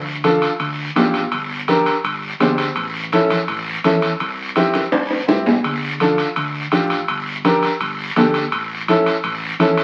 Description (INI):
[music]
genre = latin, cumbia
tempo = 166 BPM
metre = 4/4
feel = straight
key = D minor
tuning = A4 = 440 Hz
[part]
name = fingered electric bass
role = bass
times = 0.0-9.8 s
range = G1 to G2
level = -32 LUFS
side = equal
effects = none
[part]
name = clear upright piano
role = accompaniment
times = 0.2-9.8 s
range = C4 to C5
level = -20 LUFS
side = equal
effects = none
[part]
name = congas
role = percussion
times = 0.2-9.8 s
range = none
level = -25 LUFS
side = equal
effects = none
[part]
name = guiro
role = percussion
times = 0.2-9.8 s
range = none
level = -30 LUFS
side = equal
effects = none
[part]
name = timbales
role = percussion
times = 0.2-9.8 s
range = none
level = -23 LUFS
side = equal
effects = none
[sound]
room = wet studio reverb, RT60 0.7 s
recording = very old 78 rpm record, vinyl crackle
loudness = -19 LUFS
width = mono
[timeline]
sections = 0.0-9.8 A section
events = drum fill 4.7-5.6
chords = 0.0 Dm; 1.3 Gm; 2.8 A; 4.2 C; 5.6 Dm; 7.1 Gm; 8.5 A